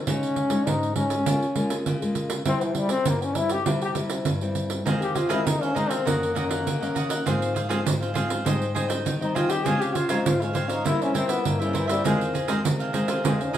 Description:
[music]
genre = samba and choro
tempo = 100 BPM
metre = 4/4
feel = straight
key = F minor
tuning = A4 = 440 Hz
[part]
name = nylon-string guitar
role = accompaniment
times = 0.0-13.6 s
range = F2 to F4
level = -27 LUFS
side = left 2 dB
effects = none
[part]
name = warm trombone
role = melody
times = 0.1-13.6 s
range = Db3 to Ab4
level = -26 LUFS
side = left 2 dB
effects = plate reverb
[part]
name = pandeiro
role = percussion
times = 0.1-13.6 s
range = none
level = -27 LUFS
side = right 4 dB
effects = none
[part]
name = cavaquinho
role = accompaniment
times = 4.9-13.6 s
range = Eb4 to G5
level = -30 LUFS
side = right 3 dB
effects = none
[sound]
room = moderate studio ambience, RT60 0.5 s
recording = studio reverb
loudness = -22 LUFS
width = side -11 dB against mid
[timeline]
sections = 0.0-13.6 A section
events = trombone solo 0.0-13.6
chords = 0.1 Dbsus2; 1.3 Bbm7/Db; 2.5 C; 4.9 Fm7; 6.1 Gb6; 7.3 Fm/Ab; 8.5 Abmaj7; 9.7 Dbmaj7; 10.9 C7; 12.1 Fm7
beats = | 0.07 0.67 1.27 1.87 | 2.47 3.07 3.67 4.27 | 4.87 5.46 6.06 6.66 | 7.26 7.86 8.46 9.06 | 9.66 10.26 10.86 11.45 | 12.05 12.65 13.25

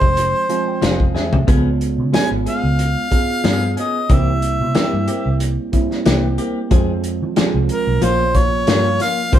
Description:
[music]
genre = straight-eighth soul blues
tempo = 92 BPM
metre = 4/4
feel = swing 54% on 16ths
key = F harmonic minor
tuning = A4 = 444 Hz
[part]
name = clear harmonica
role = melody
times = 0.0-9.4 s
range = Bb4 to Ab5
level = -20 LUFS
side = equal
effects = overdrive
[part]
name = overdriven reed electric piano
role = accompaniment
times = 0.0-9.4 s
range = F3 to Ab5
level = -22 LUFS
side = right 5 dB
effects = none
[part]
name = direct-recorded clean electric guitar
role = stabs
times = 0.0-9.4 s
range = E3 to Ab4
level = -23 LUFS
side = left 5 dB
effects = spring reverb
[part]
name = vintage muted fingered electric bass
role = bass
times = 0.0-9.4 s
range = F1 to F3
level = -20 LUFS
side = equal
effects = none
[part]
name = warm soul drum kit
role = drums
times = 0.0-9.4 s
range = hi-hat, kick drum, snare drum, toms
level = -18 LUFS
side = equal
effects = none
[sound]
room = moderate studio ambience, RT60 0.5 s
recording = band playing live in one room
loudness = -15 LUFS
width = side -11 dB against mid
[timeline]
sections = 0.0-9.4 A section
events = reed electric piano fill 0.2-1.5; drum fill 1.2-1.5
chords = 0.0 Fm; 1.5 Db7; 4.1 C7; 6.7 Fm; 8.0 Bbm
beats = 0.17 0.82 | 1.48 2.13 2.79 3.44 | 4.10 4.75 5.41 6.06 | 6.72 7.37 8.02 8.68 | 9.33

